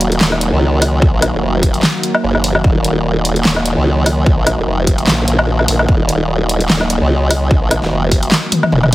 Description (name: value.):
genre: heavy wobble dubstep.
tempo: 148 BPM.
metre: 4/4.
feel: swing 55% on 16ths, half-time.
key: Eb minor.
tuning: A4 = 440 Hz.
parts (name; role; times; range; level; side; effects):
lush unison pad; sustained chords; 0.0-8.9 s; Eb3 to Eb5; -19 LUFS; equal; chorus, sidechain pumping.
formant-sweep wobble bass; bass; 0.0-8.9 s; Eb1 to Db2; -15 LUFS; equal; chorus, overdrive.
big-room dance drum kit; drums; 0.0-8.9 s; handclaps, hi-hat, snare drum, toms, woodblock; -15 LUFS; equal; small room ambience.
electronic kick drum; drums; 1.0-8.2 s; none; -14 LUFS; equal; small room ambience.
room: light reverb.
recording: heavily compressed radio sound, multiband compression.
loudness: -11 LUFS.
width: side -17 dB against mid.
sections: 0.0-8.9 A section.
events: drum fill 8.5-8.9.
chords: 0.0 Ebm.